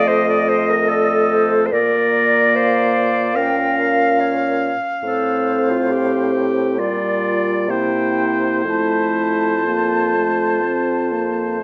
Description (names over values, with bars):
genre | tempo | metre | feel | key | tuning
classical, slow romantic movement for wind quintet | 60-74 BPM | 4/4 | rubato | F major | A4 = 440 Hz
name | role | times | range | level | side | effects
mellow silver concert flute | melody | 0.0-11.6 s | C5 to A5 | -27 LUFS | equal | none
warm oboe | second line | 0.0-11.6 s | C5 to F5 | -24 LUFS | equal | none
clear clarinet | accompaniment | 0.0-11.6 s | E4 to D5 | -22 LUFS | equal | none
warm French horn | accompaniment | 0.0-11.6 s | G3 to Db4 | -27 LUFS | equal | none
warm bassoon | bass | 0.0-11.6 s | F2 to C3 | -24 LUFS | equal | none
room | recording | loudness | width
moderate recital hall reverb, RT60 1.4 s | nothing above 8.0 kHz | -18 LUFS | mono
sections
0.0-11.6 A section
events
none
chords
0.0 F7; 1.7 Bb; 3.4 Bbm; 5.0 F/A; 6.8 Gm7/Bb; 7.7 C7; 8.6 F